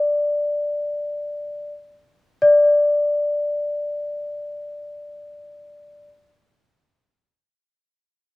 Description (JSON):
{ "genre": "turkish", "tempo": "free time", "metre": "none", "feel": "none", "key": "unclear", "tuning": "A4 = 440 Hz", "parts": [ { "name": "large celesta", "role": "solo", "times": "0.0-6.1 s", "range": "D5", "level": "-19 LUFS", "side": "left 2 dB", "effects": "slapback echo" } ], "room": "light reverb", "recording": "recorded outdoors, with no room sound", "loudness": "-18 LUFS", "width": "side -19 dB against mid", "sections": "0.0-2.4 A section; 2.4-5.4 B section", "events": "none", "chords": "none" }